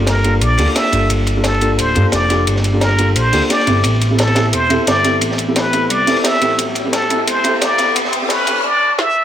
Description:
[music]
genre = liquid drum and bass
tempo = 175 BPM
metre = 4/4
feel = swing 54% on 16ths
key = unclear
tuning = A4 = 440 Hz
[part]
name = felt-muted upright piano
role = accompaniment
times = 0.0-8.6 s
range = Bb3 to A4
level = -19 LUFS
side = equal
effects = dub echo
[part]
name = smooth gliding synth bass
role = bass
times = 0.0-8.6 s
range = D1 to G2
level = -18 LUFS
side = equal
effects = none
[part]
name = trumpet with plunger mute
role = melody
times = 0.1-9.2 s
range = A4 to E5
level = -17 LUFS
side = equal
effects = tape echo
[part]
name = crunchy breakbeat drum kit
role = drums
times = 0.1-8.6 s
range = hi-hat, ride cymbal, snare drum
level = -22 LUFS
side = equal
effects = high-pass filter on cymbals, high-pass filter on hats, high-pass filter on snare, high-pass filter on room
[part]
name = drum and bass drum kit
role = drums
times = 0.1-9.1 s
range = hi-hat, snare drum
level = -21 LUFS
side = equal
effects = none
[part]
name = riser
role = sound effects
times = 5.8-8.6 s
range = none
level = -23 LUFS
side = left 1 dB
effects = none
[sound]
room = moderate plate reverb, RT60 1.6 s, small room ambience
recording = high-pass filter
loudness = -12 LUFS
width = side -10 dB against mid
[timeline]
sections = 0.0-9.2 A section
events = build-up 0.0-9.2; filter sweep 0.0-9.2; riser 5.8-8.6; drum fill 9.0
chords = 0.0 Gm9; 3.8 Am9

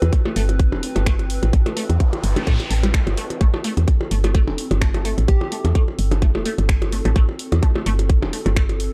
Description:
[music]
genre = minimal techno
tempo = 128 BPM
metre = 4/4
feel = swing 55% on 16ths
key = A minor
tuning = A4 = 440 Hz
[part]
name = woody FM bass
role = bass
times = 0.0-8.9 s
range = E1 to A2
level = -22 LUFS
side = equal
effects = sidechain pumping
[part]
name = garage drum kit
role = drums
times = 0.0-8.9 s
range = finger snaps, hi-hat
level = -33 LUFS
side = equal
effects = none
[part]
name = percussion blips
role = percussion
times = 0.0-8.8 s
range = none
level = -30 LUFS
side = equal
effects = none
[part]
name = warbly tape-like pad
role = texture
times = 0.0-8.9 s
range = C4 to B4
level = -35 LUFS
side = equal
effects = chorus, built-in reverb, sidechain pumping
[part]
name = electronic kick drum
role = drums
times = 0.1-8.7 s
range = none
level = -19 LUFS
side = equal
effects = none
[part]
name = resonant blip pluck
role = riff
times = 0.3-8.6 s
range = G3 to A4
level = -32 LUFS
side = equal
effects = phaser, lush chorus, sidechain pumping, tape echo
[part]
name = noise sweep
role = sound effects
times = 1.8-3.4 s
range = none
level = -35 LUFS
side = equal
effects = none
[part]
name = plucky unison lead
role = melody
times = 5.3-5.8 s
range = G4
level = -32 LUFS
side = equal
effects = lush chorus, cassette tape, tape echo
[sound]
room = digital ambience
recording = dry, gritty hardware recording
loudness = -19 LUFS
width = mono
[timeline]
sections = 0.0-8.9 A section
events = noise sweep 1.8-3.4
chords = 0.0 Am7

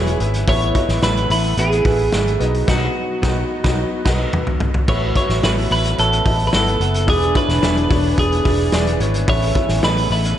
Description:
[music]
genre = piano-driven pop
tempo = 109 BPM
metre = 4/4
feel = straight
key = unclear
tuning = A4 = 440 Hz
[part]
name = twelve-string electric guitar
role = melody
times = 0.0-10.4 s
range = F#4 to C#5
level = -21 LUFS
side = right 2 dB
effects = spring reverb, slapback echo
[part]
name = mellow French horn section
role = second line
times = 0.0-10.4 s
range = C#3 to F#4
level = -28 LUFS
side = left 3 dB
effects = slapback echo
[part]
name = clear baby grand piano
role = accompaniment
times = 0.0-10.4 s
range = A2 to F#5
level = -25 LUFS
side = left 4 dB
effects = slapback echo
[part]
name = lush unison pad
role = sustained chords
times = 0.0-10.4 s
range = E3 to B4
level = -30 LUFS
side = equal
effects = none
[part]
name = direct-recorded clean electric guitar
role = riff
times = 0.0-10.4 s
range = B2 to B4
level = -29 LUFS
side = right 8 dB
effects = slapback echo
[part]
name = vintage muted fingered electric bass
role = bass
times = 0.0-10.3 s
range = E1 to B1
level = -20 LUFS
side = equal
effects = none
[part]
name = loose indie drum kit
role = drums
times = 0.1-10.4 s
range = crash cymbal, hi-hat, kick drum, snare drum, toms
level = -20 LUFS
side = equal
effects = none
[sound]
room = light reverb, small room ambience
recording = nothing above 10.9 kHz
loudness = -15 LUFS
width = side -11 dB against mid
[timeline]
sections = 0.0-4.9 A section; 4.9-10.4 A section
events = drum fill 2.7-4.9; band accent 2.7-4.9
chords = 0.5 Asus2; 2.4 B; 4.9 Asus2; 7.1 E7; 9.3 Asus2

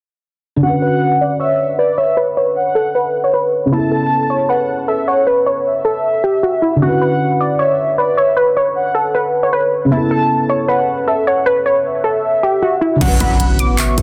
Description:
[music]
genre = hip hop, trap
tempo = 155 BPM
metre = 4/4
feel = half-time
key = B minor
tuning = A4 = 438 Hz
[part]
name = warbly dusty pluck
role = melody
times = 0.6-14.0 s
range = E4 to D6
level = -17 LUFS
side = equal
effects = chorus, low-pass filter
[part]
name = warm velvety synth lead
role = second line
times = 0.6-14.0 s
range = D5 to A5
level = -22 LUFS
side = equal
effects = chorus, digital delay
[part]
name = felt-muted upright piano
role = accompaniment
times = 0.6-14.0 s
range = C#3 to B4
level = -23 LUFS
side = equal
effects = low-pass filter
[part]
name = dark analog pad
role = sustained chords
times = 13.5-14.0 s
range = B3 to C#5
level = -26 LUFS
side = equal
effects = chorus
[part]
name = big bright polysynth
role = stabs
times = 13.0-13.4 s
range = F#2 to F#3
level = -27 LUFS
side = equal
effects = chorus
[part]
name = warm 808-style bass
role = bass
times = 13.0-14.0 s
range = A1 to B1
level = -18 LUFS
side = equal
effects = none
[part]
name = trap drum kit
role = drums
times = 13.0-14.0 s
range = crash cymbal, handclaps, hi-hat, kick drum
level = -21 LUFS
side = equal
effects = none
[part]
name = impact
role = sound effects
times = 13.1-14.0 s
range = none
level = -26 LUFS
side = equal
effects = none
[sound]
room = light reverb, digital ambience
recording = dense, heavily limited modern master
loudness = -15 LUFS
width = mono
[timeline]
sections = 0.6-13.0 A section; 13.0-14.0 B section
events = filter sweep 0.6-13.0; impact 13.0-14.0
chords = 0.6 Bmadd9; 3.7 Aadd9; 6.8 Bmadd9; 9.9 Aadd9; 13.0 Bmadd9

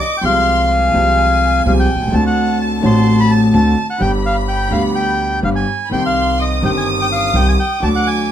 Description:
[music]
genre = tango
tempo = 126 BPM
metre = 4/4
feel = rubato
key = C harmonic minor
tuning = A4 = 436 Hz
[part]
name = bandoneon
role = melody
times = 0.0-8.3 s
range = Eb5 to C6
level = -17 LUFS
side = equal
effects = none
[part]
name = dark studio violin section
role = second line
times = 0.0-8.3 s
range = Ab5 to Eb6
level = -22 LUFS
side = left 1 dB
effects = none
[part]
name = clear concert grand piano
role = accompaniment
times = 0.2-8.3 s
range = G1 to G4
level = -17 LUFS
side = left 1 dB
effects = none
[part]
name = upright bass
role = bass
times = 0.2-8.3 s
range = G1 to D2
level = -18 LUFS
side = right 1 dB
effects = none
[sound]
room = moderate club reverb, RT60 0.6 s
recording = none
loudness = -12 LUFS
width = side -10 dB against mid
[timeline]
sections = 0.0-8.3 A section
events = none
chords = 0.2 Fmadd9/C; 2.1 D7; 4.0 G; 5.9 Cm

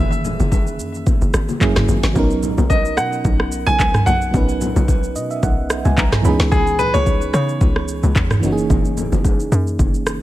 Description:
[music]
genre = amapiano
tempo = 110 BPM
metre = 4/4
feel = swing 55% on 16ths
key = unclear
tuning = A4 = 440 Hz
[part]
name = clear baby grand piano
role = melody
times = 0.0-10.2 s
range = G#4 to G#5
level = -22 LUFS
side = equal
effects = digital delay
[part]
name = FM electric piano with auto-pan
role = accompaniment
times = 0.0-10.2 s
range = D#3 to B5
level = -22 LUFS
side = right 3 dB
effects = none
[part]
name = tight log drum bass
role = bass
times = 0.0-10.2 s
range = F#1 to C#3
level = -20 LUFS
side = equal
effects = none
[part]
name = afro-pop drum kit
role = drums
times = 0.1-10.2 s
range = handclaps, kick drum, rim click, shaker, snare drum, toms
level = -18 LUFS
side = equal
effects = overdrive, vintage 12-bit sampler grit
[part]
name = congas and bongos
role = percussion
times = 0.2-9.9 s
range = none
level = -27 LUFS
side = left 5 dB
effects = none
[sound]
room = little or no reverb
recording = none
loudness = -15 LUFS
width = side -15 dB against mid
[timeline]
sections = 0.0-10.2 A section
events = FM electric piano fill 4.9-6.5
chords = 0.0 F#13; 1.6 F#9; 2.2 Bmaj7; 6.2 C#m9; 8.4 F#13

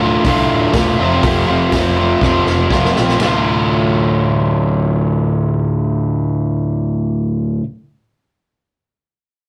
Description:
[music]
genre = garage rock duo or trio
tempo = 121 BPM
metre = 4/4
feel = straight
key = D minor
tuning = A4 = 441 Hz
[part]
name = crunchy overdriven guitar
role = riff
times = 0.0-7.6 s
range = D2 to F4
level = -16 LUFS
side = equal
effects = none
[part]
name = fingered electric bass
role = bass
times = 0.0-7.6 s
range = D1 to C2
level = -25 LUFS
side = equal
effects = tube saturation
[part]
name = vintage drum kit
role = drums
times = 0.2-3.3 s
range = hi-hat, kick drum, ride cymbal, snare drum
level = -22 LUFS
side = equal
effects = none
[sound]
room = moderate studio reverb, RT60 0.5 s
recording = rough rehearsal-room recording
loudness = -15 LUFS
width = mono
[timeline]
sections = 0.0-3.2 A section; 3.2-7.2 B section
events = drum fill 2.2-3.2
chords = 0.0 Dm; 1.0 F; 3.2 Dm

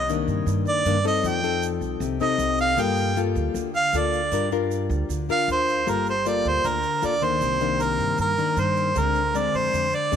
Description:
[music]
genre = bossa nova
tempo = 156 BPM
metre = 4/4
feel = straight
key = G minor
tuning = A4 = 440 Hz
[part]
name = clear harmonica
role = melody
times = 0.0-10.2 s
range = Bb4 to G5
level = -23 LUFS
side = right 3 dB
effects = tape echo
[part]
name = nylon-string guitar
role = accompaniment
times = 0.0-10.2 s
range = G2 to Bb4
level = -26 LUFS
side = left 10 dB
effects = none
[part]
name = upright bass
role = bass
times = 0.0-10.2 s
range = G1 to G2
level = -28 LUFS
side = right 2 dB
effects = none
[part]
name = egg shaker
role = percussion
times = 0.1-10.2 s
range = none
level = -43 LUFS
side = right 20 dB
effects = none
[sound]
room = light reverb, studio reverb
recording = 1960s-style stereo with parts hard left and right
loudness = -21 LUFS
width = side -8 dB against mid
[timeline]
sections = 0.0-5.9 A section; 5.9-10.2 B section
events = harmonica solo 0.0-5.9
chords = 0.0 Cm9; 1.2 F7; 2.8 Gm9; 4.3 Gm7; 5.9 Gm9; 7.4 Cm9; 9.0 Bb9/D

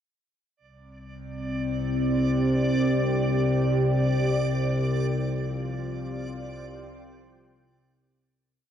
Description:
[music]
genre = dark ambient drone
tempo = free time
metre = none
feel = none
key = unclear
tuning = A4 = 441 Hz
[part]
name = deep dark ambient pad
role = sustained chords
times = 1.3-8.5 s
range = C4 to G5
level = -29 LUFS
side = equal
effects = chorus, built-in reverb, shimmer reverb
[part]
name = overtone-sweeping drone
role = drone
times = 1.3-8.6 s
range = C2 to C3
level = -26 LUFS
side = left 1 dB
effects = chorus, built-in reverb
[part]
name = backwards swelling texture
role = texture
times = 1.3-8.5 s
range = D5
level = -34 LUFS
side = right 3 dB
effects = built-in reverb, shimmer reverb
[sound]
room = wet lush hall reverb, RT60 3.1 s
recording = dreamy mix soaked in reverb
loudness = -23 LUFS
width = side -9 dB against mid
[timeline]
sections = 0.6-8.5 A section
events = fade-out on ambient pad 0.6-8.5; fade-out on synth texture 0.6-8.5; fade-out 4.5-8.5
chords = 0.6 C5; 4.5 Fsus2

